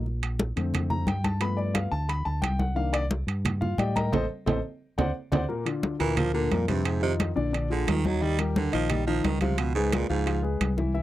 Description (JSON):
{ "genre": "Afro-Cuban jazz", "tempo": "176 BPM", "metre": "4/4", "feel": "straight", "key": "unclear", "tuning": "A4 = 440 Hz", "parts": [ { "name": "warm grand piano", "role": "accompaniment", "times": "0.0-11.0 s", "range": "Bb2 to B5", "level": "-29 LUFS", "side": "left 3 dB", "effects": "none" }, { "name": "fingered electric bass", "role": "bass", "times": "0.0-11.0 s", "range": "A1 to A2", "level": "-28 LUFS", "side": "equal", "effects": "none" }, { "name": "congas", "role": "percussion", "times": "0.1-11.0 s", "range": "none", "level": "-30 LUFS", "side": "left 1 dB", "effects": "none" }, { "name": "timbales", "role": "percussion", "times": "0.2-10.8 s", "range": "none", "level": "-33 LUFS", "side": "right 7 dB", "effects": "none" }, { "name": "growling baritone saxophone", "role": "second line", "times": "6.0-10.4 s", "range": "G2 to G3", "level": "-29 LUFS", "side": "right 6 dB", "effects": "none" } ], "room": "little or no reverb", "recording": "dry, close 1970s-style studio recording", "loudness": "-24 LUFS", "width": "side -14 dB against mid", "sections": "0.0-5.5 A section; 5.5-11.0 A section", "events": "grand piano solo 0.0-5.5; band accent 4.1-5.5; drum fill 4.5-5.5; baritone saxophone solo 5.5-11.0", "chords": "0.1 Bbmaj9; 1.4 G7; 2.8 Cm9; 4.1 Adim; 4.8 D7; 5.5 Bbadd9; 6.9 F5; 7.5 Bb7; 8.2 Ebadd9; 9.6 C#7", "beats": "| 0.06 0.40 0.74 1.08 | 1.42 1.76 2.10 2.44 | 2.77 3.12 3.46 3.79 | 4.13 4.47 4.82 5.16 | 5.50 5.84 6.18 6.52 | 6.86 7.20 7.54 7.88 | 8.22 8.56 8.90 9.24 | 9.59 9.93 10.27 10.61 | 10.95" }